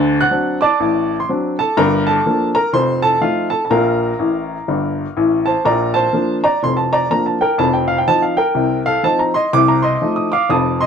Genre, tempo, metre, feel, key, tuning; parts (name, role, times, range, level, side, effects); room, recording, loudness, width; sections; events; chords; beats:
jazz, stride piano; 124 BPM; 4/4; swing 61% on 8ths; Bb major; A4 = 440 Hz
clear upright piano; solo; 0.0-10.9 s; F1 to A6; -14 LUFS; equal
light reverb; close, detailed microphones; -14 LUFS; side -7 dB against mid
0.0-5.6 A section; 5.6-10.9 A section
upright piano fill 4.2-5.6
0.0 D7; 1.8 Gm7; 2.7 F7; 3.7 Bb5; 5.6 Bb; 7.6 F7; 9.5 F7/C
0.29 0.78 1.27 | 1.75 2.24 2.73 3.21 | 3.70 4.18 4.67 5.16 | 5.64 6.12 6.61 7.10 | 7.58 8.07 8.55 9.04 | 9.52 10.01 10.49